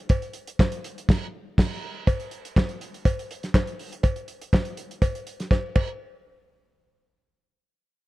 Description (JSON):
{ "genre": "disco", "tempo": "122 BPM", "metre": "4/4", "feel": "straight", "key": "none", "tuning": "none", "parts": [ { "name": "damped 70s drum kit", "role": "drums", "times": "0.1-5.9 s", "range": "crash cymbal, handclaps, hi-hat, kick drum, snare drum", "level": "-22 LUFS", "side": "equal", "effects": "none" }, { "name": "cowbell", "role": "percussion", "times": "0.1-6.0 s", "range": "none", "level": "-32 LUFS", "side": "right 1 dB", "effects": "none" } ], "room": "little or no reverb", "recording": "dark, warm production", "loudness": "-23 LUFS", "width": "side -18 dB against mid", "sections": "0.0-2.1 A section; 2.1-6.0 B section; 6.0-8.0 C section", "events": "band accent 1.1-2.1; drum fill 5.5-6.0", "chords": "none" }